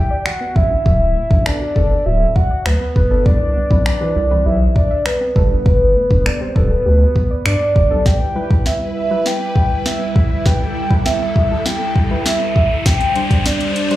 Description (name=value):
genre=dance-pop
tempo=100 BPM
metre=4/4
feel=straight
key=E minor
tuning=A4 = 440 Hz
part: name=soft octave-layered synth lead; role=melody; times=0.0-14.0 s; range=B4 to G5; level=-19 LUFS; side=equal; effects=chorus, phaser, digital delay, slapback echo
part: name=deep mellow chord stab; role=accompaniment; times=0.0-14.0 s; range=D3 to C5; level=-25 LUFS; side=left 1 dB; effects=chorus, sidechain pumping, slapback echo
part: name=soft round pluck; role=arpeggios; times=0.1-8.0 s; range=E3 to E5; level=-31 LUFS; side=equal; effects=chorus, phaser, sidechain pumping, digital delay, slapback echo
part: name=smooth R&B drum kit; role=drums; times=0.3-14.0 s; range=finger snaps, hi-hat, kick drum, snare drum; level=-16 LUFS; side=equal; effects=none
part: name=saturated sub bass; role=bass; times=0.6-8.0 s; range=D1 to G2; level=-16 LUFS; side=equal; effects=sidechain pumping
part: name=string machine, violas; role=sustained chords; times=8.1-14.0 s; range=G3 to C5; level=-24 LUFS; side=right 1 dB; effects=ensemble chorus, sidechain pumping
part: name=riser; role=sound effects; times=10.2-14.0 s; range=none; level=-27 LUFS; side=left 1 dB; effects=none
room=light reverb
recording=live gig heard through the venue's PA, club reverb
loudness=-13 LUFS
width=side -15 dB against mid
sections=0.0-8.1 A section; 8.1-14.0 B section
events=build-up 8.1-14.0; drum fill 8.1-14.0; filter sweep 8.1-14.0; riser 10.2-14.0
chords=0.0 Em7; 0.9 Bm7/D; 3.3 Cmaj7; 5.4 Gadd9; 8.1 Em; 12.9 D7sus4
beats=0.26 | 0.86 1.46 2.06 2.66 | 3.26 3.86 4.46 5.06 | 5.66 6.26 6.86 7.46 | 8.06 8.66 9.26 9.86 | 10.46 11.06 11.66 12.26 | 12.86 13.46